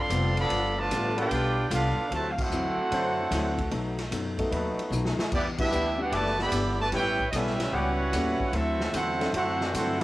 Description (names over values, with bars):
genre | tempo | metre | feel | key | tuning
jazz, big band swing | 149 BPM | 4/4 | swing 67% on 8ths | D major | A4 = 441 Hz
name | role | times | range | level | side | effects
bright trumpet section | melody | 0.0-10.0 s | B3 to C6 | -28 LUFS | right 1 dB | cassette tape, plate reverb
bright trombone section | second line | 0.0-10.0 s | C3 to G4 | -32 LUFS | right 1 dB | cassette tape, plate reverb
upright bass | bass | 0.0-10.0 s | F1 to G2 | -32 LUFS | equal | none
archtop guitar, miked and amplified | accompaniment | 0.1-10.0 s | A2 to A4 | -35 LUFS | left 3 dB | cassette tape, plate reverb
swinging big-band drum kit | drums | 0.1-10.0 s | crash cymbal, hi-hat, kick drum, ride cymbal, snare drum | -34 LUFS | equal | cassette tape
clear grand piano | accompaniment | 0.9-1.1, 3.7-9.3 s | F#3 to A4 | -34 LUFS | left 1 dB | cassette tape, plate reverb
mellow trombone section | sustained chords | 1.2-10.0 s | E3 to D5 | -33 LUFS | left 1 dB | cassette tape, plate reverb
room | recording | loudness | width
moderate booth ambience, RT60 0.3 s | home recording on cassette | -25 LUFS | side -17 dB against mid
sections
0.0-10.0 A section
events
band accent 2.3, 5.5; drum fill 4.9-5.3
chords
0.0 G9; 2.1 D9; 3.7 B7; 5.3 Em7; 6.9 A9; 8.5 D9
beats
0.10 | 0.50 0.90 1.30 1.70 | 2.10 2.51 2.91 3.31 | 3.71 4.11 4.51 4.92 | 5.32 5.72 6.12 6.52 | 6.92 7.32 7.73 8.13 | 8.53 8.93 9.33 9.73